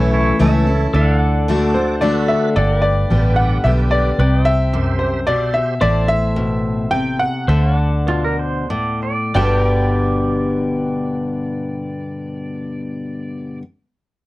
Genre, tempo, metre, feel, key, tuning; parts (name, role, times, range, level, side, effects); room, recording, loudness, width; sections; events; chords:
honky-tonk and classic country; 89-111 BPM; 3/4; straight; G major; A4 = 439 Hz
pedal steel guitar; second line; 0.0-2.3, 8.1-13.6 s; E4 to F#5; -25 LUFS; right 3 dB
picked steel-string acoustic guitar; accompaniment; 0.0-13.6 s; F#2 to G4; -20 LUFS; left 2 dB
tonewheel organ; accompaniment; 0.0-5.7 s; E4 to E5; -27 LUFS; right 6 dB; slow rotary speaker, chorus vibrato
pedal steel guitar; sustained chords; 0.0-13.6 s; A4 to B5; -28 LUFS; left 2 dB; wide subtle chorus
vintage muted fingered electric bass; bass; 0.0-13.6 s; G1 to D2; -18 LUFS; equal
bright upright piano; melody; 1.7-13.6 s; C5 to G5; -20 LUFS; equal
little or no reverb; dry, close 1970s-style studio recording; -15 LUFS; side -18 dB against mid
0.0-2.6 A section; 2.6-9.3 B section; 9.3-13.4 C section
pedal steel guitar solo 0.0-2.6; slowing down 5.8-9.3
0.0 A; 0.9 D; 2.6 G; 4.2 C; 5.8 Am; 7.5 D; 9.3 G